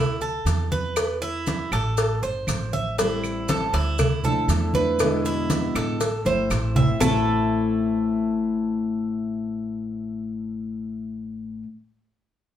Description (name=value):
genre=latin, Cuban son and guajira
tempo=119 BPM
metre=4/4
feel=straight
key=A minor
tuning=A4 = 442 Hz
part: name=Cuban tres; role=arpeggios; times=0.0-11.6 s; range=A3 to E5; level=-27 LUFS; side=right 2 dB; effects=none
part: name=upright bass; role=bass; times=0.0-11.6 s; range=G1 to E2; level=-28 LUFS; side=right 1 dB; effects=none
part: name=congas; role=percussion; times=0.2-7.1 s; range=none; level=-26 LUFS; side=right 1 dB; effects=none
part: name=maracas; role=percussion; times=0.2-7.1 s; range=none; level=-37 LUFS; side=right 4 dB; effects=none
part: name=cowbell and bongos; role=percussion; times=0.5-7.1 s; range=none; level=-28 LUFS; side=left 1 dB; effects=none
part: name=claves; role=percussion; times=1.0-7.1 s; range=none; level=-37 LUFS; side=right 2 dB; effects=none
part: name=fingerpicked steel-string acoustic guitar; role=accompaniment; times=3.0-11.7 s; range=A2 to E4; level=-26 LUFS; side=left 3 dB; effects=none
room=wet studio reverb, RT60 0.7 s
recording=band playing live in one room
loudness=-21 LUFS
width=side -10 dB against mid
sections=0.0-7.0 A section; 7.0-11.0 B section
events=drum fill 6.3-7.0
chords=0.0 Dsus2; 1.0 E5; 2.0 Am; 3.0 Am7; 4.0 Dmadd9; 5.0 E7; 6.0 Am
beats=0.47 | 0.97 1.47 1.98 2.48 | 2.98 3.49 3.99 4.50 | 5.00 5.50 6.00 6.51 | 7.01 7.51 8.02 8.52 | 9.02 9.53 10.03 10.53